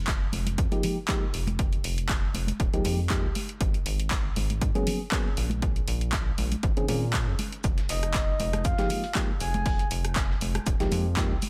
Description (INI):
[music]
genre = deep house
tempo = 119 BPM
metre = 4/4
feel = swing 54% on 16ths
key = F minor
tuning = A4 = 441 Hz
[part]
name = rubbery square bass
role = bass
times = 0.0-11.4 s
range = Eb1 to Bb2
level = -32 LUFS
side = equal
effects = sidechain pumping
[part]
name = electronic kick drum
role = drums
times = 0.1-11.3 s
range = none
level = -31 LUFS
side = equal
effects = overdrive
[part]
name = punchy analog drum machine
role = drums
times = 0.1-11.5 s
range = handclaps, hi-hat, rim click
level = -36 LUFS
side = equal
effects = overdrive
[part]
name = congas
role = percussion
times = 0.3-11.5 s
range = none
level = -38 LUFS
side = equal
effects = none
[part]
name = mellow FM electric piano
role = stabs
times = 0.7-11.3 s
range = Eb3 to Ab4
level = -35 LUFS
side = equal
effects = chorus, dub echo
[part]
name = dusty soul sampler-style drum kit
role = drums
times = 7.6-11.5 s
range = hi-hat, shaker, snare drum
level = -44 LUFS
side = equal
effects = none
[part]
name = breathy flute-like synth lead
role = melody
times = 7.9-9.9 s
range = Eb5 to Ab5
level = -36 LUFS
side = equal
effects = chorus, delay
[sound]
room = digital ambience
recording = none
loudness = -27 LUFS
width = mono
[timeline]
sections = 0.0-11.5 A section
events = none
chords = 0.0 Fm11; 3.4 Abm11; 5.6 Bbm11; 7.6 Fm11